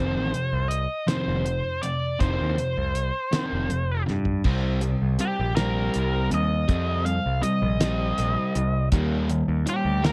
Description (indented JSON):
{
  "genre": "indie rock",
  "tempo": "54 BPM (dotted quarters)",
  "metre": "6/8",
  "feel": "straight",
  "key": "C minor",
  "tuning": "A4 = 439 Hz",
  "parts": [
    { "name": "biting lead guitar", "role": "melody", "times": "0.0-10.1 s", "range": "G4 to F5", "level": "-31 LUFS", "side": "equal", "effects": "overdrive, slapback echo" },
    { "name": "overdriven semi-hollow guitar", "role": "riff", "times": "0.0-10.1 s", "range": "F2 to C4", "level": "-29 LUFS", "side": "equal", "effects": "none" },
    { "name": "growling picked electric bass", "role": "bass", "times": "0.0-10.1 s", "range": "F1 to G2", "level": "-28 LUFS", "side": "equal", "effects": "overdrive" },
    { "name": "cloth-damped thuddy drum kit", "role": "drums", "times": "0.3-10.1 s", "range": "crash cymbal, hi-hat, kick drum, snare drum, toms", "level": "-28 LUFS", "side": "equal", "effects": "none" }
  ],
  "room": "little or no reverb",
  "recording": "dry, close 1970s-style studio recording",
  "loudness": "-25 LUFS",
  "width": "mono",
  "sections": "0.0-4.4 A section; 4.4-10.1 B section",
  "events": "drum fill 4.1-4.4; lead electric guitar solo 4.4-10.1",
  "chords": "0.0 F7(no3); 4.4 Cm7; 8.9 Ebmaj7",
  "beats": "1.09 | 2.21 3.33 | 4.45 5.57 | 6.69 7.81 | 8.93 10.05"
}